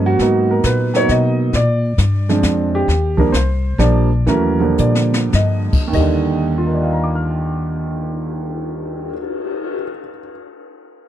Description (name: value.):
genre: jazz piano trio.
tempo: 94-134 BPM.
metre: 3/4.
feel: swing 68% on 8ths.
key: Eb major.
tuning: A4 = 443 Hz.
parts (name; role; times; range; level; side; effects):
warm concert grand piano; melody; 0.0-10.3 s; Eb2 to F6; -17 LUFS; right 2 dB; none.
upright bass; bass; 0.0-9.1 s; Bb1 to Cb3; -18 LUFS; left 1 dB; none.
jazz brush drum kit; drums; 0.2-9.6 s; brushed snare drum, crash cymbal, cymbal swell, hi-hat, kick drum, snare drum; -22 LUFS; left 2 dB; none.
room: little or no reverb.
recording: dry, close 1970s-style studio recording.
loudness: -15 LUFS.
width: side -11 dB against mid.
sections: 0.0-5.9 A section; 5.9-9.8 B section.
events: slowing down 2.9-5.9; drum fill 4.8-5.3.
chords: 0.2 Abm9; 1.5 Bb7; 2.9 Ebmaj7.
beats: | 0.20 0.65 1.09 | 1.54 1.99 2.43 | 2.88 3.33 3.79 | 4.28 4.79 5.34 | 5.95 6.59 7.23 | 7.87 8.50 9.14.